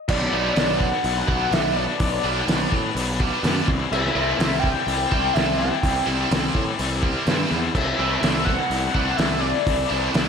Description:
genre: indie rock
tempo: 125 BPM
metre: 4/4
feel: straight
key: unclear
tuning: A4 = 441 Hz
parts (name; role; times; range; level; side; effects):
- overdriven synth lead; melody; 0.1-9.9 s; D5 to G5; -25 LUFS; left 1 dB; distortion, phaser, slapback echo, tape echo
- overdriven electric guitar; riff; 0.1-10.3 s; B2 to B4; -27 LUFS; left 8 dB; harmonic tremolo, slapback echo
- fuzz picked electric bass; bass; 0.1-10.3 s; B1 to A2; -26 LUFS; equal; overdrive
- cloth-damped thuddy drum kit; drums; 0.1-10.3 s; crash cymbal, hi-hat, kick drum, snare drum; -24 LUFS; equal; none
- overdriven electric guitar; riff; 0.3-10.3 s; B2 to E4; -28 LUFS; right 6 dB; analog chorus, tape echo
room: moderate lush hall reverb, RT60 2.0 s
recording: big arena sound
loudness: -19 LUFS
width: side -6 dB against mid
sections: 0.1-10.3 A section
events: none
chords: 0.1 Bm; 2.0 G/B; 3.7 C; 7.8 Am/C

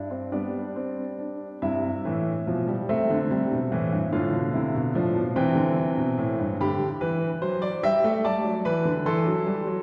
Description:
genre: classical, baroque-style 4-part fugue for grand piano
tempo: 49 BPM (dotted quarters)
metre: 6/8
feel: straight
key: C major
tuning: A4 = 440 Hz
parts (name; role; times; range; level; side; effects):
- warm concert grand piano; solo; 0.0-9.8 s; G2 to C6; -26 LUFS; equal; none
room: wet concert hall reverb, RT60 2.2 s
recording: recorded in a church or concert hall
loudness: -26 LUFS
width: mono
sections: 0.0-1.6 A section; 1.6-9.8 B section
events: none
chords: 0.3 G; 1.6 C/G; 2.9 Am/C; 4.1 Dm/A; 5.4 C; 6.6 G/D; 7.8 Em/G; 9.0 Am/E

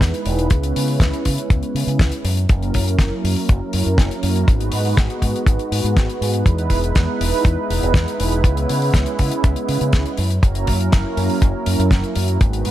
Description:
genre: nu-disco, nu disco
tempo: 121 BPM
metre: 4/4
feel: straight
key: unclear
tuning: A4 = 440 Hz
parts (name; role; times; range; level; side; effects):
- warm analog pad; accompaniment; 0.0-12.7 s; F#3 to B4; -22 LUFS; right 2 dB; chorus, sidechain pumping, tape echo
- fingered electric bass with an envelope filter; bass; 0.0-12.7 s; E1 to C#3; -20 LUFS; equal; tube saturation
- damped 70s drum kit; drums; 0.0-12.7 s; hi-hat, snare drum; -26 LUFS; left 2 dB; none
- kick drum; drums; 0.0-12.5 s; none; -15 LUFS; equal; none
room: small room ambience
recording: none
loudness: -16 LUFS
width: side -13 dB against mid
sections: 0.0-12.7 A section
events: none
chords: 0.0 Emaj7; 0.5 C#m7; 2.2 F#7; 4.5 G#m7; 6.5 Emaj7; 8.4 C#m7; 10.2 F#7

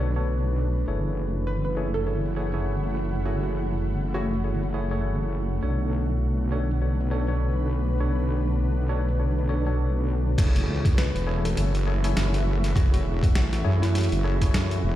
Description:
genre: glitch hop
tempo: 101 BPM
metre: 4/4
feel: swing 59% on 16ths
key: F# minor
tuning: A4 = 444 Hz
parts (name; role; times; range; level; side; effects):
- warm analog pad; sustained chords; 0.0-15.0 s; D3 to F#4; -35 LUFS; left 1 dB; chorus, sidechain pumping
- tine electric piano; stabs; 0.0-15.0 s; D4 to C#5; -33 LUFS; left 1 dB; overdrive, medium stereo tremolo, sidechain pumping, ping-pong delay
- wobble bass; bass; 0.0-15.0 s; E1 to F#2; -24 LUFS; equal; chorus
- ethereal airy pad; texture; 0.0-15.0 s; A3 to F#5; -34 LUFS; left 2 dB; ensemble chorus, built-in reverb, sidechain pumping
- woody wave-folded pluck; melody; 1.5-5.0, 11.0-14.6 s; E4 to B4; -35 LUFS; right 2 dB; lush chorus, ping-pong delay
- boom bap sampler-style drum kit; drums; 10.4-14.8 s; crash cymbal, hi-hat, snare drum; -32 LUFS; equal; low-pass filter on hats, low-pass filter on cymbals, low-pass filter on snare
- electronic kick drum; drums; 10.4-14.5 s; none; -21 LUFS; equal; none
room: little or no reverb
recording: played on a big sound system in a bare room, stone room reverb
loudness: -22 LUFS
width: side -13 dB against mid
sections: 0.0-10.4 A section; 10.4-15.0 B section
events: filter sweep on analog synth pad 0.0-10.4; drop 10.4-15.0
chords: 0.0 Bm7; 0.9 F#m7; 5.6 Bm7; 10.4 F#m7

